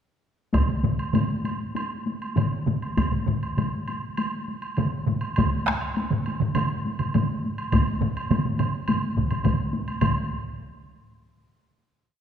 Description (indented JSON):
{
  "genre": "japanese traditional, taiko drum ensemble",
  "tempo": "98-110 BPM",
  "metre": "4/4",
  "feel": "straight",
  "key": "none",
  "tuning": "none",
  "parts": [
    { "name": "taiko ensemble", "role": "percussion", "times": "0.5-10.3 s", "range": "none", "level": "-28 LUFS", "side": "left 1 dB", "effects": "none" },
    { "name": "taiko ensemble", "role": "percussion", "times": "0.5-10.5 s", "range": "none", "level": "-28 LUFS", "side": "left 4 dB", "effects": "none" },
    { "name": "taiko ensemble", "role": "percussion", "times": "0.5-10.5 s", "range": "none", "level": "-28 LUFS", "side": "right 4 dB", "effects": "none" },
    { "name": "taiko ensemble", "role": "percussion", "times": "0.5-10.3 s", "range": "none", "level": "-28 LUFS", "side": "equal", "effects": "none" },
    { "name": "woodblock", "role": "percussion", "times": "0.5-10.3 s", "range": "none", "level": "-33 LUFS", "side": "right 3 dB", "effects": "none" }
  ],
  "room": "wet scoring stage reverb, RT60 1.9 s",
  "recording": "minimal, uncompressed stereo recording",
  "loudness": "-23 LUFS",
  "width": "side -8 dB against mid",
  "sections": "0.5-10.0 A section; 10.0-12.2 final hit",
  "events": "speeding up 0.5-12.2",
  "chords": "none",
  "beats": "| 0.53 1.14 1.75 2.36 | 2.97 3.57 4.18 4.78 | 5.37 5.97 6.56 7.14 | 7.72 8.30 8.88 9.45 | 10.01"
}